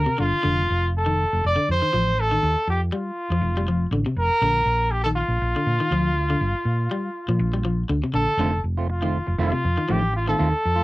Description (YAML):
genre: afrobeat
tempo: 121 BPM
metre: 4/4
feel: swing 53% on 16ths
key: F mixolydian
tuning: A4 = 438 Hz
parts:
  - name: warm trumpet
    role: melody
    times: 0.0-10.8 s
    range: F4 to D5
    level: -23 LUFS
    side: equal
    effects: cassette tape
  - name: electric guitar at the edge of break-up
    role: arpeggios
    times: 0.0-10.4 s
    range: C3 to G3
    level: -26 LUFS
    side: left 2 dB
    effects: cassette tape
  - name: hollow-body short-scale fingered electric bass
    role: bass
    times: 0.0-10.8 s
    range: F1 to Bb2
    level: -24 LUFS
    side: equal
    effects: none
  - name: semi-hollow electric guitar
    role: stabs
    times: 8.4-10.8 s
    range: Eb3 to F4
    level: -26 LUFS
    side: right 4 dB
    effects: cassette tape
room: light reverb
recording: home recording on cassette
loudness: -20 LUFS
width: side -19 dB against mid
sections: 0.0-10.8 A section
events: none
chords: 0.4 F7; 4.4 Bb; 8.4 F7